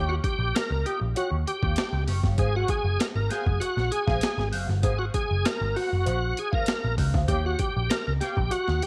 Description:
funk; 98 BPM; 4/4; straight; A4 = 437 Hz
bright tonewheel organ; melody; 0.0-8.9 s; Gb4 to Bb4; -31 LUFS; equal; overdrive, chorus vibrato, slow rotary speaker
clean electric guitar; accompaniment; 0.0-8.7 s; F4 to Gb5; -38 LUFS; equal; wah, analog chorus
vintage muted picked electric bass; bass; 0.0-8.8 s; Gb1 to Eb2; -29 LUFS; equal
breakbeat sampler-style drum kit; drums; 0.2-8.9 s; hi-hat, kick drum, snare drum; -31 LUFS; equal
light reverb, digital ambience; -26 LUFS; mono
0.0-8.9 A section
0.0 Eb9; 2.4 Ab13; 7.3 Eb9

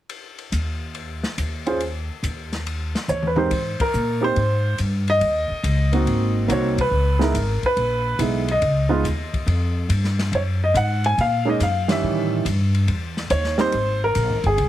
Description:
jazz piano trio; 141 BPM; 4/4; swing 68% on 8ths; Ab major; A4 = 441 Hz
open jazz drum kit; drums; 0.1-14.7 s; hi-hat, kick drum, ride cymbal, snare drum, toms; -30 LUFS; left 2 dB
upright bass; bass; 0.5-14.7 s; G1 to Bb2; -22 LUFS; equal
warm upright piano; melody; 1.7-14.7 s; Ab2 to Ab5; -21 LUFS; right 1 dB
light reverb; heavily compressed radio sound; -19 LUFS; side -13 dB against mid
0.1-3.5 A section; 3.5-14.7 B section
drum fill 3.1-3.5; band accent 3.7, 6.7, 11.8
0.1 N.C.; 3.5 Abmaj9; 5.2 Eb7(no3); 6.1 Ab7; 6.9 Dbm7; 8.6 Db; 10.3 Gb69; 12.0 A7#11; 13.7 Abmaj9

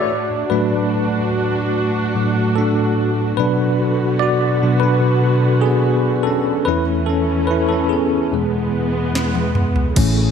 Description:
pop ballad; 73 BPM; 4/4; straight; A4 = 441 Hz
bell-like tine electric piano; accompaniment; 0.0-10.3 s; E2 to E5; -17 LUFS; left 1 dB; medium stereo tremolo
dark studio string section; sustained chords; 0.0-10.3 s; E2 to F#4; -20 LUFS; right 1 dB
smooth R&B drum kit; drums; 9.2-10.2 s; crash cymbal, hi-hat, kick drum, snare drum, toms; -19 LUFS; equal; gated reverb
fingered electric bass; bass; 10.0-10.3 s; A1; -16 LUFS; equal
moderate lush hall reverb, RT60 1.9 s, digital ambience; bright 1980s-style digital production; -15 LUFS; side -7 dB against mid
0.0-10.0 A section
tine electric piano solo 0.0-10.0; drum fill 9.1-10.0
0.1 D/A; 3.4 Bm; 6.7 A/E; 8.3 E

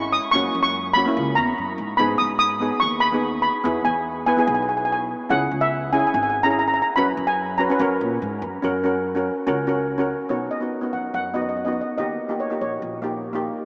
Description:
calypso; 144 BPM; 4/4; straight; A4 = 440 Hz
steel pan; melody; 0.0-13.4 s; C#5 to D#6; -24 LUFS; equal
steel pan; accompaniment; 0.0-13.5 s; G#3 to B4; -26 LUFS; equal
upright bass; bass; 0.0-13.5 s; G#1 to A#2; -34 LUFS; equal
wet cathedral reverb, RT60 7.0 s; in a vast, echoing space, small speaker sound; -22 LUFS; mono
0.0-8.6 A section; 8.6-10.3 B section; 10.3-13.7 C section
0.3 F#; 2.0 G#m; 3.7 E; 5.3 C#m; 7.0 F#sus4; 7.8 F#; 10.3 B; 12.0 D#7

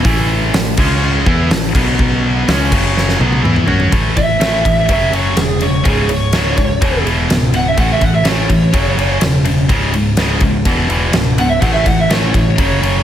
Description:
hard rock; 124 BPM; 4/4; straight; A4 = 440 Hz
heavy high-gain guitar; riff; 0.0-13.0 s; C#2 to F#4; -16 LUFS; equal; distortion
picked electric bass; bass; 0.0-13.0 s; C#1 to F#2; -18 LUFS; equal
huge arena drum kit; drums; 0.0-12.9 s; crash cymbal, hi-hat, kick drum, ride cymbal, snare drum, toms; -16 LUFS; equal
lead guitar through a small cranked amp; melody; 4.2-13.0 s; G#4 to F#5; -18 LUFS; right 2 dB; overdrive
light reverb; -11 LUFS; side -10 dB against mid
0.0-3.9 A section; 3.9-13.0 B section
drum fill 3.0-3.9; lead electric guitar solo 3.9-13.0
0.1 A5; 0.8 C#5; 1.3 A5; 1.7 B5; 2.5 C#5; 2.7 F#5; 3.2 Bsus24; 3.9 A5; 4.9 F#5; 5.9 C#5; 6.8 E5; 7.8 A; 8.7 F#5; 9.7 C#5; 10.7 E5; 11.6 A

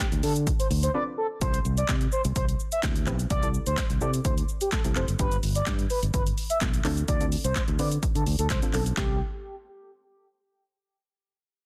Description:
dance-pop; 127 BPM; 4/4; straight; C major; A4 = 440 Hz
expressive synth lead; melody; 0.0-9.2 s; G4 to E5; -34 LUFS; equal; chorus, sidechain pumping, low-pass filter, digital delay
soft round pluck; accompaniment; 0.0-9.2 s; B3 to C5; -38 LUFS; equal; chorus, sidechain pumping, low-pass filter
house drum kit; drums; 0.0-9.1 s; handclaps, hi-hat, kick drum, shaker, snare drum; -30 LUFS; equal
fingered electric bass; bass; 0.1-9.2 s; F1 to D3; -30 LUFS; equal; sidechain pumping
little or no reverb; dense, heavily limited modern master; -26 LUFS; mono
0.0-1.4 A section; 1.4-9.0 B section; 9.0-10.9 C section
drop 0.0-1.4; break 0.9-1.4; filter sweep 1.4-9.0
0.0 Dm7; 1.4 C6; 5.2 G7; 6.8 Dm7; 9.0 C6

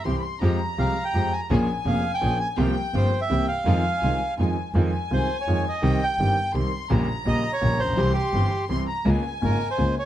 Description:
tango; 167 BPM; 3/4; rubato; F minor; A4 = 440 Hz
bandoneon; melody; 0.0-10.1 s; G4 to Ab5; -26 LUFS; right 2 dB
warm chamber violin section; second line; 0.0-10.1 s; G5 to C6; -30 LUFS; left 4 dB
bright concert grand piano; accompaniment; 0.1-9.9 s; F1 to Ab4; -26 LUFS; equal
clear studio string section; stabs; 0.1-4.5 s; Ab3 to Ab4; -34 LUFS; right 3 dB
dark double bass; bass; 0.1-9.9 s; F1 to F2; -25 LUFS; equal
light reverb; dark, warm production; -21 LUFS; side -12 dB against mid
0.0-4.7 A section; 4.7-10.1 A section
0.4 Fmadd9; 1.5 Bbm7; 2.6 C7sus4; 3.3 C7; 3.7 Fm7; 5.8 Cm; 6.9 Gdim/Bb; 8.0 C; 9.1 Db6

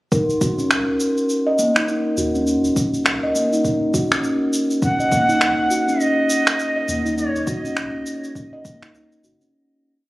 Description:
organic downtempo; 102 BPM; 4/4; swing 60% on 16ths; Eb minor pentatonic; A4 = 440 Hz
steel tongue drum; arpeggios; 0.1-9.5 s; Bb3 to Eb5; -20 LUFS; equal; digital delay
electronic kick drum; drums; 0.1-8.8 s; -23 LUFS; equal
electronic shaker and finger snaps; drums; 0.1-9.5 s; -23 LUFS; equal
quartz singing bowl; texture; 0.1-9.5 s; Bb4; -29 LUFS; equal
warm sub bass; bass; 0.3-9.4 s; Eb1 to Eb2; -32 LUFS; equal; tube saturation, sidechain pumping
breathy bright ney; melody; 4.8-8.4 s; Db5 to Gb5; -21 LUFS; right 1 dB; tape echo
moderate echo chamber reverb, RT60 1.4 s, studio ambience; recorded on a phone in the room, club reverb, compression; -17 LUFS; side -18 dB against mid
0.1-9.5 groove
fade-out 6.4-9.5
0.1 Eb7(no3)

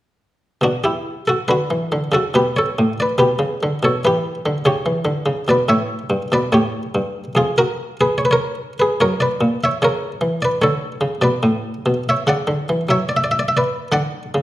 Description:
classical, baroque-style suite movement for harpsichord; 72 BPM; 4/4; rubato; B minor; A4 = 441 Hz
buff-stop harpsichord; solo; 0.6-14.4 s; E#2 to F#5; -16 LUFS; equal
moderate recital hall reverb, RT60 1.3 s; -16 LUFS; side -15 dB against mid
0.6-14.4 A section
0.6 Bm; 2.3 G; 4.0 C#dim; 7.3 F#maj9/E#; 9.0 F#7; 10.6 Bm

